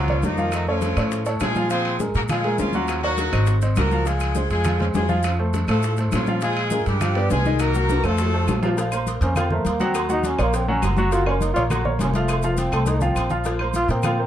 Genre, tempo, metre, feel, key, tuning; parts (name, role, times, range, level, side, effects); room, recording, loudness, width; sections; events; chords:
latin, salsa; 204 BPM; 4/4; straight; Bb harmonic minor from 8.8 s; A4 = 438 Hz
clear horn section; melody; 0.0-8.6 s; Eb3 to C5; -25 LUFS; left 1 dB
warm baby grand piano; accompaniment; 0.0-14.3 s; Eb3 to Gb5; -25 LUFS; equal
upright bass; bass; 0.0-14.3 s; F1 to Bb2; -23 LUFS; equal
bongos and cowbell; percussion; 0.1-14.2 s; -33 LUFS; left 3 dB
congas; percussion; 0.1-14.3 s; -29 LUFS; left 2 dB
timbales and agogo bells; percussion; 0.1-14.2 s; -32 LUFS; right 4 dB
maracas; percussion; 0.2-14.2 s; -41 LUFS; left 7 dB
claves; percussion; 0.5-14.2 s; -35 LUFS; left 5 dB
bright trombone; melody; 9.2-14.3 s; A3 to Gb4; -26 LUFS; equal
moderate studio reverb, RT60 0.5 s; dark, warm production; -19 LUFS; side -11 dB against mid
0.0-8.8 A section; 8.8-14.3 B section
drum fill 7.9-8.8, 12.9-13.5; trombone solo 8.8-14.3
0.0 Gb6 (rootless); 0.5 Faug; 1.7 Bbm11; 2.9 Ebm7; 3.5 Ab13; 4.1 Dbmaj7; 5.2 F; 6.4 Bb5; 7.0 G7b9; 7.6 Cm7b5; 8.2 F; 8.8 Bbsus2; 9.9 Ebm7; 11.1 Gbmaj7; 12.3 F; 13.5 Bbsus2